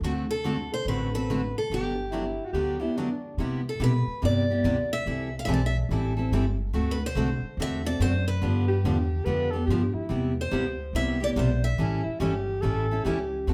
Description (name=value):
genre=acoustic string swing (jazz manouche)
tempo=143 BPM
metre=4/4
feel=swing 63% on 8ths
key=G major, C major from 3.4 s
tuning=A4 = 437 Hz
part: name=picked steel-string acoustic guitar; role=melody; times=0.0-12.2 s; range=F#4 to F5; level=-34 LUFS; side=equal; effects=none
part: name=picked steel-string acoustic guitar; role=accompaniment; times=0.0-13.5 s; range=C3 to A4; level=-31 LUFS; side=equal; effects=none
part: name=upright bass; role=bass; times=0.0-13.5 s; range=G1 to C3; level=-30 LUFS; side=equal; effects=none
part: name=breathy alto saxophone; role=second line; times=2.1-3.4, 8.7-13.5 s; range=D4 to B4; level=-33 LUFS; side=equal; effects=none
room=wet club reverb, RT60 0.8 s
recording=heard from further back in the room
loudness=-27 LUFS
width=mono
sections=0.0-3.4 A section; 3.4-13.5 B section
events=break 3.0-3.4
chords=0.0 D7; 1.7 Gmaj7; 3.4 Cmaj9; 5.1 Am7; 6.7 D7; 8.4 G7; 10.1 Cmaj7; 11.8 A7